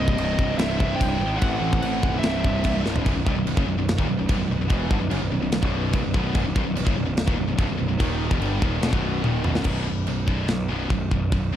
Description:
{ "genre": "heavy metal", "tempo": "146 BPM", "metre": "4/4", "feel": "straight", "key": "B phrygian dominant", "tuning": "A4 = 440 Hz", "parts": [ { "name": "high-gain lead guitar", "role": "melody", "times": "0.0-2.8 s", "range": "D#5 to G5", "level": "-29 LUFS", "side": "right 1 dB", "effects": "distortion, ping-pong delay" }, { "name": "high-gain lead guitar", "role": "second line", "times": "0.0-2.8 s", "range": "C4 to E4", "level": "-32 LUFS", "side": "right 4 dB", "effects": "distortion" }, { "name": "warm studio string section", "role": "sustained chords", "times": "0.0-9.6 s", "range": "F#3 to C5", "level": "-38 LUFS", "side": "left 2 dB", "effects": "none" }, { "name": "crunchy overdriven guitar", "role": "riff", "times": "0.0-9.6 s", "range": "B1 to A3", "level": "-30 LUFS", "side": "equal", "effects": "none" }, { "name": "heavy high-gain guitar", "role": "riff", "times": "0.0-11.6 s", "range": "B1 to G3", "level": "-31 LUFS", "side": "left 12 dB", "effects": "distortion" }, { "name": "scooped high-gain guitar", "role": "riff", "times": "0.0-11.6 s", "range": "B1 to A3", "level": "-30 LUFS", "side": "right 7 dB", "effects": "distortion" }, { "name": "fuzz picked electric bass", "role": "bass", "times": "0.0-11.6 s", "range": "B0 to B1", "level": "-26 LUFS", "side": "equal", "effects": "overdrive" }, { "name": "tight metal drum kit", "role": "drums", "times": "0.1-11.4 s", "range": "china cymbal, crash cymbal, kick drum, snare drum, toms", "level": "-25 LUFS", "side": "equal", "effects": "none" } ], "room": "small room reverb", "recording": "dark, warm production", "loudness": "-21 LUFS", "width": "side -11 dB against mid", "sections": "0.0-3.1 A section; 3.1-9.7 B section; 9.7-11.6 C section", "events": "drum fill 2.9, 9.2-9.7", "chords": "0.0 C; 1.4 Am; 2.2 C; 3.1 B; 9.7 B5", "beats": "0.18 0.59 1.00 | 1.42 1.83 2.24 2.65 | 3.06 3.47 3.88 4.30 | 4.71 5.12 5.53 5.94 | 6.36 6.77 7.18 7.59 | 8.01 8.42 8.83 9.25 | 9.66 10.07 10.49 10.90 | 11.32" }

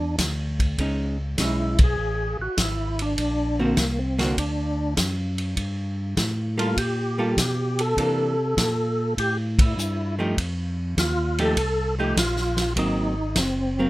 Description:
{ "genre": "soul jazz organ trio", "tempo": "100 BPM", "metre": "4/4", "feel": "swing 69% on 8ths", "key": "unclear", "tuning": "A4 = 440 Hz", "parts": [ { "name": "percussive tonewheel organ", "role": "melody", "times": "0.0-13.9 s", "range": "A#3 to A4", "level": "-26 LUFS", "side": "equal", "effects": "slow rotary speaker, overdrive, chorus vibrato" }, { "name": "tonewheel organ", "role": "bass", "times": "0.0-13.9 s", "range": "Gb1 to C3", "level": "-26 LUFS", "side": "equal", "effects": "slow rotary speaker" }, { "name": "vintage drum kit", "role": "drums", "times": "0.2-13.6 s", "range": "hi-hat, kick drum, ride cymbal, snare drum", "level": "-24 LUFS", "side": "equal", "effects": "none" }, { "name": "archtop guitar, miked and amplified", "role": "accompaniment", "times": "0.8-13.9 s", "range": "D3 to A4", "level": "-25 LUFS", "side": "right 1 dB", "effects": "none" } ], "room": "light reverb", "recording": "rough home demo mix", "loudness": "-21 LUFS", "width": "side -17 dB against mid", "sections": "0.0-13.9 A section", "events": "band accent 1.7-2.0, 9.5-9.8", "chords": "0.0 E7(no3); 0.8 Amaj9#11; 3.2 Daug7; 5.6 Gm9; 8.0 C9; 10.4 F9; 12.8 Ab9", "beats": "0.18 | 0.78 1.38 1.98 2.58 | 3.18 3.77 4.37 4.97 | 5.57 6.17 6.77 7.37 | 7.97 8.57 9.17 9.77 | 10.37 10.96 11.56 12.16 | 12.76 13.36" }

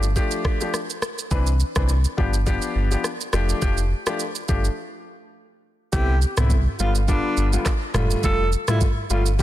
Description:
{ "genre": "afrobeats", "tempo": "104 BPM", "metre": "4/4", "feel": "swing 55% on 16ths", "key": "unclear", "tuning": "A4 = 440 Hz", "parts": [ { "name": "clear baby grand piano", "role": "accompaniment", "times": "0.0-9.4 s", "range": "D3 to B4", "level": "-27 LUFS", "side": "left 3 dB", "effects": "none" }, { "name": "sub bass with octave", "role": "bass", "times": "0.0-9.4 s", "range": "F1 to C2", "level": "-20 LUFS", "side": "equal", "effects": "none" }, { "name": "afro-pop drum kit", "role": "drums", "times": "0.0-9.4 s", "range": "handclaps, kick drum, rim click, shaker, toms", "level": "-24 LUFS", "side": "equal", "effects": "soft clipping on snare" }, { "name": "breathy alto saxophone", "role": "melody", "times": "5.9-9.4 s", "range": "D4 to A4", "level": "-27 LUFS", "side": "right 1 dB", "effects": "ping-pong delay" } ], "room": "little or no reverb", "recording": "dense, heavily limited modern master", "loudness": "-19 LUFS", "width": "side -14 dB against mid", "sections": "0.0-5.9 A section; 5.9-9.4 B section", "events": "break 4.8-5.9", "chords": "0.0 F69; 1.3 Cmaj9; 2.2 G7; 3.3 F69; 5.9 Cmaj9; 6.8 G7; 7.9 F69", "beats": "0.16 0.74 | 1.31 1.89 2.47 3.04 | 3.62 4.20 4.78 5.35 | 5.93 6.51 7.08 7.66 | 8.24 8.81 9.39" }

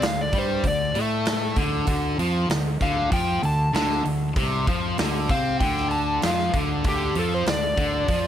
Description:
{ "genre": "blues rock power trio and southern rock", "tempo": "97 BPM", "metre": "4/4", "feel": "straight", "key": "D minor", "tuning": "A4 = 440 Hz", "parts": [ { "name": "overdriven slide guitar", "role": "melody", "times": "0.0-8.3 s", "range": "G4 to A5", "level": "-26 LUFS", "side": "left 1 dB", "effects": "none" }, { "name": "fuzz guitar", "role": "riff", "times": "0.0-8.3 s", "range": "C3 to C4", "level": "-25 LUFS", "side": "equal", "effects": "distortion" }, { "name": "fuzz fingered electric bass", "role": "bass", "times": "0.0-8.3 s", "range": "C2 to C3", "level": "-28 LUFS", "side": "equal", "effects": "overdrive" }, { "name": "big rock drum kit", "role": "drums", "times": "0.0-8.2 s", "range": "hi-hat, kick drum, snare drum", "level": "-27 LUFS", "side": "equal", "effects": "none" } ], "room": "light reverb, studio ambience", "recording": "none", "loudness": "-21 LUFS", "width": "side -10 dB against mid", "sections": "0.0-8.3 A section", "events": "none", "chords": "0.0 Dm", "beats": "0.03 0.65 1.27 | 1.89 2.51 3.13 3.75 | 4.37 4.99 5.61 6.22 | 6.84 7.46 8.08" }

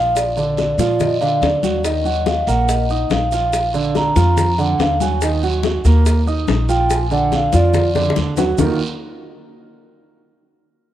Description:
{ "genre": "Afro-Cuban jazz", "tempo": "142 BPM", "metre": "4/4", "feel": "straight", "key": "Eb harmonic minor", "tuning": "A4 = 440 Hz", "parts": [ { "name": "vibraphone with medium mallets", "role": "melody", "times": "0.0-8.1 s", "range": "D5 to Bb5", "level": "-19 LUFS", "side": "equal", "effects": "cassette tape" }, { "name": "warm concert grand piano", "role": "accompaniment", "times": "0.0-8.8 s", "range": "D3 to Eb6", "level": "-21 LUFS", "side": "right 5 dB", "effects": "cassette tape" }, { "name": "upright bass", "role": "bass", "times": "0.0-8.8 s", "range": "Bb1 to Bb2", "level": "-19 LUFS", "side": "equal", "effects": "none" }, { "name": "bongos", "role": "percussion", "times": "0.2-8.7 s", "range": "none", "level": "-24 LUFS", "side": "left 7 dB", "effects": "none" }, { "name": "congas", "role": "percussion", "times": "0.2-8.7 s", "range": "none", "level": "-26 LUFS", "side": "left 7 dB", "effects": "none" }, { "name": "guiro", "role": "percussion", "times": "0.2-8.7 s", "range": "none", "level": "-33 LUFS", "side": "right 6 dB", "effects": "none" }, { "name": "maracas", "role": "percussion", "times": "0.2-8.7 s", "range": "none", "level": "-34 LUFS", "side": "right 8 dB", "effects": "none" } ], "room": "light reverb, studio reverb", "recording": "home recording on cassette", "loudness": "-14 LUFS", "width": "side -12 dB against mid", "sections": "0.0-8.6 A section; 8.6-10.3 B section", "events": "vibraphone solo 0.0-8.6; drum fill 8.0-8.6", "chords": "0.2 Bb; 1.8 Ebmadd9; 3.5 Bb; 5.2 Ebmadd9; 6.9 Bb; 8.6 Ebmadd9", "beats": "| 0.16 0.58 1.00 1.42 | 1.84 2.27 2.69 3.11 | 3.53 3.95 4.37 4.79 | 5.21 5.63 6.06 6.48 | 6.90 7.32 7.74 8.16 | 8.59" }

